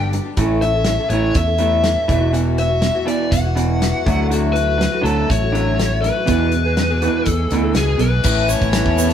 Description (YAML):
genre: folk rock and heartland rock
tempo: 122 BPM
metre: 4/4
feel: straight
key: unclear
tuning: A4 = 438 Hz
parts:
  - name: biting lead guitar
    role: melody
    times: 0.0-9.1 s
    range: G#4 to F#5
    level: -21 LUFS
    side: left 2 dB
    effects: overdrive
  - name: picked old ladder-braced acoustic guitar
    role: accompaniment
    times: 0.0-9.1 s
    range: E2 to A4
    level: -24 LUFS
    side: left 6 dB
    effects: none
  - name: electric guitar through a small old amp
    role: riff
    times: 0.0-9.1 s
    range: E2 to B3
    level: -22 LUFS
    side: right 3 dB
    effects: none
  - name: fingered electric bass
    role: bass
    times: 0.0-9.1 s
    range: E1 to E2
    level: -20 LUFS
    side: right 1 dB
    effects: none
  - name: loose indie drum kit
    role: drums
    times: 0.1-9.1 s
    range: crash cymbal, hi-hat, kick drum, snare drum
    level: -22 LUFS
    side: equal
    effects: none
  - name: tube shaker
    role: percussion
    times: 8.2-9.1 s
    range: none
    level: -30 LUFS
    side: right 7 dB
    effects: none
  - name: clear symphonic string section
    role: sustained chords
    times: 8.3-9.1 s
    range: B3 to A4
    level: -27 LUFS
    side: left 1 dB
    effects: none
room: moderate stone room reverb, RT60 1.3 s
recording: band playing live in one room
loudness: -15 LUFS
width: side -9 dB against mid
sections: 0.0-8.2 A section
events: none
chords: 0.4 A; 2.1 Esus2; 4.1 Dadd9; 6.3 E; 8.2 Aadd9